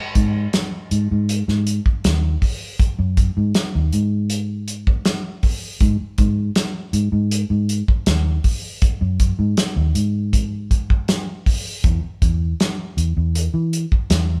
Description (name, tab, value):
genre	straight-eighth soul blues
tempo	80 BPM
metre	4/4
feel	straight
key	unclear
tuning	A4 = 440 Hz
part	vintage muted fingered electric bass	bass	0.2-14.4 s	D#2 to E3	-22 LUFS	equal	none
part	warm soul drum kit	drums	0.2-14.3 s	hi-hat, kick drum, snare drum	-21 LUFS	equal	none
room	light reverb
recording	band playing live in one room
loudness	-20 LUFS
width	mono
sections	0.0-14.4 A section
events	none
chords	none